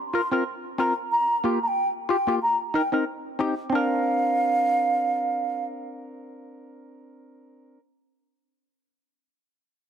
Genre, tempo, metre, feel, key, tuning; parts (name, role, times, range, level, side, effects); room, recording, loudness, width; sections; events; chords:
dancehall; 92 BPM; 4/4; swing 56% on 16ths; Bb major; A4 = 441 Hz
mellow hollow wooden flute; melody; 0.1-5.6 s; F5 to C6; -24 LUFS; right 1 dB; tape echo
percussive organ stab; accompaniment; 0.1-7.8 s; Bb3 to Bb4; -27 LUFS; left 1 dB; chorus
light reverb; dense, heavily limited modern master; -22 LUFS; side -8 dB against mid
0.0-3.7 A section; 3.7-6.3 B section
0.0 Fsus4; 1.1 Gm7; 2.4 Cm7; 3.7 Bbadd9